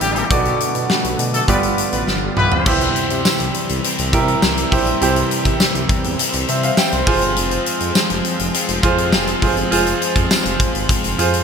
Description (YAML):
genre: 1980s-style pop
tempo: 102 BPM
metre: 4/4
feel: straight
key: unclear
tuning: A4 = 440 Hz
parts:
  - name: clear concert grand piano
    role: accompaniment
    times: 0.0-11.4 s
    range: G2 to Ab5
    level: -20 LUFS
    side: right 3 dB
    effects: none
  - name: lush unison pad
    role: sustained chords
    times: 0.0-11.4 s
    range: D3 to F#4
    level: -25 LUFS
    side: left 1 dB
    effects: chorus
  - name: warm horn section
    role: stabs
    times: 0.0-2.7 s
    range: E3 to B4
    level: -22 LUFS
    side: left 2 dB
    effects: digital delay
  - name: smooth synth bass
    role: bass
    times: 0.0-11.4 s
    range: F1 to C3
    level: -24 LUFS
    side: equal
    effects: none
  - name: huge arena drum kit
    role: drums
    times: 0.0-11.4 s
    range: crash cymbal, hi-hat, kick drum, snare drum, tambourine, toms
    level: -18 LUFS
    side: left 1 dB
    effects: none
  - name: distorted electric guitar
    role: accompaniment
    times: 2.7-11.4 s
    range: C3 to F4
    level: -26 LUFS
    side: left 2 dB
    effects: overdrive, lush chorus
room: wet plate reverb, RT60 2.1 s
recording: bright 1980s-style digital production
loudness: -15 LUFS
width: side -6 dB against mid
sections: 0.0-2.7 A section; 2.7-11.4 B section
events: drum fill 2.1-2.7; grand piano fill 6.2-7.4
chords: 0.3 Bm7; 1.5 G7; 2.7 C; 7.1 Fm